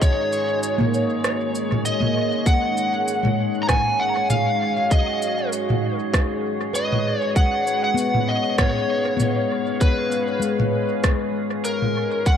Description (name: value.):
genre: ambient dub.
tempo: 98 BPM.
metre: 4/4.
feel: swing 56% on 16ths.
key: G# dorian.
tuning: A4 = 441 Hz.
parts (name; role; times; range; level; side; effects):
overdriven slide guitar; melody; 0.0-12.4 s; A#4 to A#5; -23 LUFS; equal; dub echo.
deep dark ambient pad; sustained chords; 0.0-12.4 s; G#2 to E#5; -27 LUFS; equal; chorus, built-in reverb.
electronic kick drum; drums; 0.0-12.4 s; none; -19 LUFS; equal; none.
organic electronic drum kit; drums; 0.0-12.4 s; rim click, shaker, toms; -25 LUFS; right 1 dB; dub echo.
drifting glass-harmonics texture; texture; 0.0-12.4 s; G#3 to G#4; -32 LUFS; left 2 dB; chorus, built-in reverb.
handpan; arpeggios; 0.8-11.8 s; G#3 to B4; -28 LUFS; left 3 dB; dub echo.
room: moderate spring reverb, RT60 1.9 s.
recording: none.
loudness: -19 LUFS.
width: side -8 dB against mid.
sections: 0.0-12.4 A section.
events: kick drops out 1.2-2.5.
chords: 0.0 F#6/G#; 2.5 G#m7.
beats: | 0.01 0.63 1.24 1.85 | 2.46 3.08 3.69 4.30 | 4.91 5.53 6.14 6.75 | 7.36 7.97 8.59 9.20 | 9.81 10.42 11.04 11.65 | 12.26.